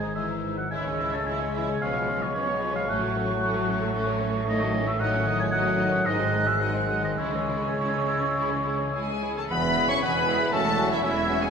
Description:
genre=classical, dramatic, fast romantic movement for symphony orchestra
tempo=100-120 BPM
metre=4/4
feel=rubato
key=C# minor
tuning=A4 = 441 Hz
part: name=warm symphonic violin section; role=melody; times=0.0-11.5 s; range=G#4 to C#6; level=-33 LUFS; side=left 4 dB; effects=none
part: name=bright flute section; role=second line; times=0.0-11.5 s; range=C#5 to F#6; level=-32 LUFS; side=right 2 dB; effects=none
part: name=clear oboe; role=second line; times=0.0-11.5 s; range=E4 to A5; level=-30 LUFS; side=right 1 dB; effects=none
part: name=mellow clarinet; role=second line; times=0.0-11.4 s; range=F#4 to C#5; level=-37 LUFS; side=right 1 dB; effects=none
part: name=warm symphonic violin section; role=second line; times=0.0-11.5 s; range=A3 to G#4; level=-36 LUFS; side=left 2 dB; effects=none
part: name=rich symphonic viola section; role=accompaniment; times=0.0-11.5 s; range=D#3 to C#4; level=-37 LUFS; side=right 1 dB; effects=none
part: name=mellow French horn section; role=sustained chords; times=0.0-11.5 s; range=C#3 to C#4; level=-34 LUFS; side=left 2 dB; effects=none
part: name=concert harp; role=arpeggios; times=0.0-11.5 s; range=G#2 to C#5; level=-34 LUFS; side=left 4 dB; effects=none
part: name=rich symphonic double bass section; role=bass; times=0.0-11.5 s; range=E1 to C#2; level=-34 LUFS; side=right 1 dB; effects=none
part: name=warm symphonic cello section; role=bass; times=0.0-11.5 s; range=E2 to C#3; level=-34 LUFS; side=right 3 dB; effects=none
part: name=clear bassoon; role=accompaniment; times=0.2-11.4 s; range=G#3 to C#4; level=-34 LUFS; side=right 1 dB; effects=none
part: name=mellow trumpet section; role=stabs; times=8.9-11.5 s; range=E4 to C#5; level=-31 LUFS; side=right 3 dB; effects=none
part: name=clear tuba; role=bass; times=9.5-11.5 s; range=E1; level=-34 LUFS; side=right 4 dB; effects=none
room=wet concert hall reverb, RT60 1.9 s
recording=minimal, uncompressed stereo recording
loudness=-23 LUFS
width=side -6 dB against mid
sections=0.0-9.5 A section; 9.5-11.5 B section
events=none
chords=0.0 G#; 0.7 C#m; 1.8 C#7/B; 2.9 F#m/A; 5.0 D#m7b5/A; 6.1 G#7; 7.2 C#m; 9.5 E; 10.5 F#m7/E

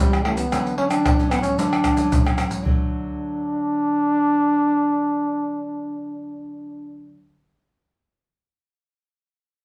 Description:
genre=samba and choro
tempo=113 BPM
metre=4/4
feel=straight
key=D major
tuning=A4 = 440 Hz
part: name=mellow trombone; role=melody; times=0.0-7.2 s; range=G3 to D4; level=-24 LUFS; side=equal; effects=none
part: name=nylon-string guitar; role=accompaniment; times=0.0-7.2 s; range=A2 to E4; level=-33 LUFS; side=equal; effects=none
part: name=maracas, pandeiro, tamborim and surdo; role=percussion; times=0.1-2.8 s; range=none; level=-23 LUFS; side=equal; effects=none
room=wet large studio reverb, RT60 0.8 s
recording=band playing live in one room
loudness=-21 LUFS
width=mono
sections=0.0-2.6 A section; 2.6-6.9 B section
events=none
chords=0.0 A7; 0.5 Dmaj7; 2.6 D

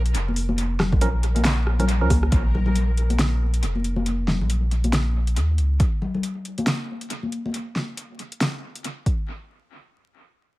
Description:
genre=deep dubstep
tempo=138 BPM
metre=4/4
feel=swing 58% on 16ths, half-time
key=Bb minor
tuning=A4 = 440 Hz
part: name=soft dub sub bass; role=bass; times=0.0-5.8 s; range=F1 to Eb2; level=-21 LUFS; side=equal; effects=none
part: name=backwards swelling texture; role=texture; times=0.0-2.3 s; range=Bb4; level=-40 LUFS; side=left 1 dB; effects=built-in reverb
part: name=deep house drum kit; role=drums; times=0.1-9.2 s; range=handclaps, hi-hat, rim click, snare drum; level=-27 LUFS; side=equal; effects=overdrive, dub echo
part: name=congas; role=percussion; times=0.3-7.5 s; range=none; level=-28 LUFS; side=left 2 dB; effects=dub echo
part: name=electronic kick drum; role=drums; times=0.9-2.4, 5.8-5.9, 9.1-9.2 s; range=none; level=-21 LUFS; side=equal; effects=overdrive
part: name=percussive organ stab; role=stabs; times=1.0-2.1 s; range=F3 to Bb4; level=-30 LUFS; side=right 3 dB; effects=chorus, dub echo
room=little or no reverb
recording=echo-heavy mix, vinyl crackle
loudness=-20 LUFS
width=side -18 dB against mid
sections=0.0-2.3 A section; 2.3-9.3 B section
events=drop 0.0-2.3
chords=0.0 Bbm; 2.3 Bb5

